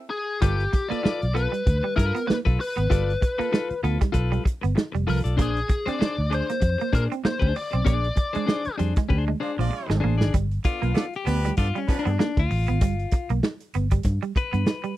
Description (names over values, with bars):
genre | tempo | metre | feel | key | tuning
funk | 97 BPM | 4/4 | swing 56% on 16ths | G mixolydian | A4 = 441 Hz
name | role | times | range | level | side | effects
clear horn section | second line | 0.0-0.1, 9.4-12.1 s | F3 to F5 | -32 LUFS | right 3 dB | none
biting lead guitar | melody | 0.1-8.8 s | G4 to D5 | -28 LUFS | left 3 dB | overdrive
clean electric guitar | accompaniment | 0.4-14.9 s | C#4 to D5 | -30 LUFS | left 6 dB | none
semi-hollow electric guitar | riff | 0.4-14.9 s | F3 to D4 | -30 LUFS | right 10 dB | lush chorus
vintage muted fingered electric bass | bass | 0.4-14.6 s | F1 to Bb2 | -24 LUFS | equal | none
warm soul drum kit | drums | 0.4-15.0 s | hi-hat, kick drum, snare drum | -23 LUFS | equal | none
room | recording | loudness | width
little or no reverb | dry, close 1970s-style studio recording | -21 LUFS | side -15 dB against mid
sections
0.4-10.3 A section; 10.3-15.0 B section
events
break 0.0-0.4; band accent 7.9-10.3; drum fill 9.1-10.3; clean electric guitar solo 10.3-15.0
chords
0.4 G9; 5.4 Bb9; 10.3 G7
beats
| 0.42 1.04 1.67 2.29 | 2.91 3.53 4.14 4.76 | 5.38 6.00 6.62 7.24 | 7.86 8.48 9.10 9.72 | 10.34 10.96 11.57 12.19 | 12.81 13.43 14.05 14.66